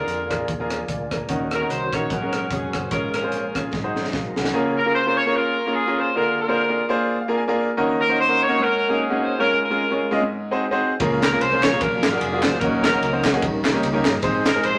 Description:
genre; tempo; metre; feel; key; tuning
uptempo gospel; 149 BPM; 4/4; swing 57% on 8ths; Db major; A4 = 440 Hz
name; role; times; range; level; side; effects
clear saxophone section; melody; 0.0-14.8 s; Db4 to Db5; -24 LUFS; equal; none
clear grand piano; accompaniment; 0.0-14.8 s; Ab2 to Bb5; -25 LUFS; equal; none
tonewheel organ; sustained chords; 0.0-4.8, 11.0-14.8 s; Eb3 to C5; -32 LUFS; equal; slow rotary speaker, chorus vibrato
fingered electric bass; bass; 0.1-4.5, 11.0-14.8 s; F1 to F2; -36 LUFS; equal; none
crisp fusion drum kit; drums; 0.1-4.5, 11.0-14.7 s; hi-hat, kick drum, ride cymbal, rim click, snare drum; -27 LUFS; equal; none
group handclap; percussion; 11.2-14.5 s; none; -32 LUFS; equal; none
room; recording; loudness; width
moderate large studio reverb, RT60 1.3 s; none; -21 LUFS; mono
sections
0.0-4.5 A section; 4.5-14.8 B section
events
drum fill 3.7-4.5; grand piano fill 7.0-7.8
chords
0.0 Bb7; 1.3 Ebm7; 2.1 Ab9sus4; 2.9 Db/Ab; 3.7 Ab7; 4.5 Db6; 6.2 Bb7/D; 7.8 Ebm7; 8.6 Ab9sus4; 9.4 Db/Ab; 10.2 Ab7; 11.0 Db6; 11.8 Bb7b13; 12.6 Ebm7; 13.4 Eb7; 14.2 Ab

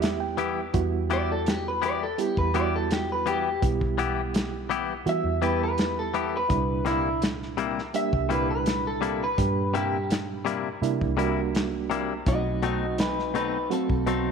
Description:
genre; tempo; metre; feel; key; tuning
straight-eighth soul blues; 83 BPM; 4/4; straight; E minor; A4 = 440 Hz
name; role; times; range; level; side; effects
reed electric piano; accompaniment; 0.0-14.3 s; Bb2 to G5; -30 LUFS; right 11 dB; fast tremolo
vintage muted fingered electric bass; bass; 0.0-14.3 s; B1 to E3; -31 LUFS; equal; none
warm soul drum kit; drums; 0.0-14.2 s; hi-hat, kick drum, snare drum; -29 LUFS; equal; none
direct-recorded clean electric guitar; stabs; 0.4-14.3 s; B2 to G4; -30 LUFS; left 10 dB; none
electric guitar at the edge of break-up; melody; 1.1-14.3 s; C4 to E5; -28 LUFS; left 1 dB; lush chorus
room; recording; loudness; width
moderate echo chamber reverb, RT60 2.2 s; 1960s-style stereo with parts hard left and right; -24 LUFS; side -6 dB against mid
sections
0.0-14.3 A section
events
reed electric piano fill 0.0-0.7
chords
0.0 Em; 6.5 C7; 12.3 B7b9

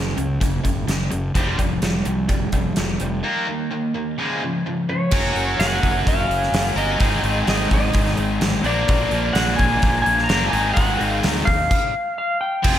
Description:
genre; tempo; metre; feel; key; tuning
classic rock; 127 BPM; 4/4; straight; Ab mixolydian from 5.1 s; A4 = 437 Hz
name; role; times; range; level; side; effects
distorted electric guitar; riff; 0.0-12.8 s; Gb2 to Bb4; -22 LUFS; equal; overdrive
fuzz fingered electric bass; bass; 0.0-12.8 s; F1 to Eb2; -25 LUFS; equal; overdrive
gated 80s drum kit; drums; 0.2-12.8 s; crash cymbal, hi-hat, kick drum, snare drum; -22 LUFS; equal; none
clean lap steel guitar; melody; 4.9-12.8 s; Db5 to Bb5; -22 LUFS; left 1 dB; none
room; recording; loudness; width
moderate concert hall reverb, RT60 2.3 s; big arena sound; -18 LUFS; side -11 dB against mid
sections
0.0-5.1 A section; 5.1-12.7 B section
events
break 3.2-5.1; stop 11.7-12.7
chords
0.0 Gb5; 1.4 Fsus2; 3.2 Eb5; 4.2 Db; 5.1 Gb; 7.0 Ab; 8.7 Bb; 10.5 Ab; 11.5 Ebsus2

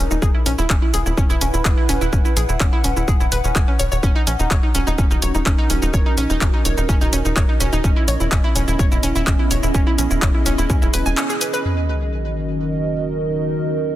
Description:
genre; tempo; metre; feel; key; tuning
melodic techno; 126 BPM; 4/4; straight; Eb phrygian; A4 = 440 Hz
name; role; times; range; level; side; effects
analog pluck; arpeggios; 0.0-11.6 s; C#4 to G#5; -24 LUFS; right 1 dB; chorus, sidechain pumping, digital delay
tight sequencer bass; bass; 0.0-11.1 s; Eb1 to Eb2; -21 LUFS; equal; sidechain pumping
warbly tape-like pad; texture; 0.0-14.0 s; Db4 to Gb5; -27 LUFS; right 2 dB; chorus, built-in reverb, phaser, sidechain pumping
punchy analog drum machine; drums; 0.1-11.6 s; handclaps, hi-hat, shaker; -24 LUFS; equal; overdrive, low-pass filter on cymbals, low-pass filter on perc, low-pass filter on hats, low-pass filter on snare
electronic kick drum; drums; 0.2-10.8 s; none; -18 LUFS; equal; none
dark analog pad; sustained chords; 4.8-14.0 s; Eb3 to Eb5; -25 LUFS; equal; chorus, sidechain pumping
sub drop; sound effects; 11.7-13.6 s; none; -24 LUFS; equal; none
room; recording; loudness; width
light reverb; dense, heavily limited modern master; -16 LUFS; side -14 dB against mid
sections
0.0-11.7 A section; 11.7-14.0 B section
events
break 11.2-11.7; band accent 11.2; impact 11.7-13.6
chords
0.2 E6/Eb; 4.0 Ebm7; 7.8 Dbm7/Eb; 11.7 Ebm7

